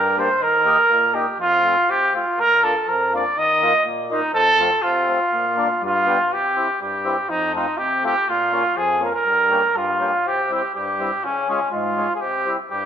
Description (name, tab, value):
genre	alpine folk, alpine dance band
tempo	122 BPM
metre	2/4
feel	rubato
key	Bb major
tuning	A4 = 441 Hz
part	mellow trumpet	melody	0.0-12.9 s	Db4 to Eb5	-18 LUFS	right 1 dB	none
part	mellow accordion	accompaniment	0.0-12.9 s	F2 to G4	-25 LUFS	left 2 dB	none
room	wet stone room reverb, RT60 1.2 s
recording	band playing live in one room, lossy compression artefacts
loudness	-17 LUFS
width	side -8 dB against mid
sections	0.0-6.3 A section; 6.3-12.9 B section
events	none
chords	0.4 Eb; 1.4 F; 2.4 Bb; 3.4 Ebsus2; 4.3 F; 5.3 Bb; 5.8 G7; 6.3 C; 7.3 F; 8.3 Bbm; 9.3 Gdim; 10.3 C; 11.2 Db; 12.2 C